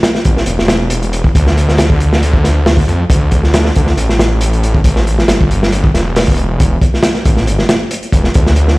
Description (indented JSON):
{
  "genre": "breakbeat, breaks",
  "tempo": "137 BPM",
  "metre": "4/4",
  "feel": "swing 54% on 16ths",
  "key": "unclear",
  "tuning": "A4 = 440 Hz",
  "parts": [
    { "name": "crunchy breakbeat drum kit", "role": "drums", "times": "0.0-8.8 s", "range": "hi-hat, kick drum, snare drum", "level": "-12 LUFS", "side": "equal", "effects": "none" },
    { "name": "detuned saw bass", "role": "bass", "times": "0.3-8.8 s", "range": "E1 to F2", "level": "-13 LUFS", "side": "equal", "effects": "none" }
  ],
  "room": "little or no reverb",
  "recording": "played on a big sound system in a bare room, stone room reverb",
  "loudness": "-10 LUFS",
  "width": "side -21 dB against mid",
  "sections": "0.0-8.8 A section",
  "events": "none",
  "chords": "none"
}